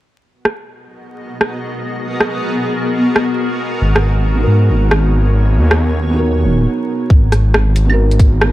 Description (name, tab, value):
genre	future garage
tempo	137 BPM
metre	4/4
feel	swing 64% on 16ths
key	G# minor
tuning	A4 = 440 Hz
part	granular cloud pad	sustained chords	1.3-8.5 s	B3 to D#5	-20 LUFS	left 1 dB	built-in reverb, sidechain pumping
part	garage drum kit	drums	0.5-8.5 s	claves, hi-hat, rim click	-16 LUFS	equal	low-pass filter on snare, low-pass filter on hats, low-pass filter on perc
part	swelling detuned saw bass	bass	3.8-8.5 s	D#1 to G#2	-12 LUFS	equal	tube saturation, sidechain pumping
part	felt-muted upright piano	accompaniment	4.3-8.5 s	B3 to A#4	-20 LUFS	right 2 dB	sidechain pumping, tape echo
part	electronic kick drum	drums	7.1-8.3 s	none	-8 LUFS	equal	none
room	digital ambience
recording	dark, warm production, vinyl crackle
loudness	-12 LUFS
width	side -16 dB against mid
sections	0.1-7.1 A section; 7.1-8.5 B section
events	break 6.7-7.1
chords	0.1 G#m9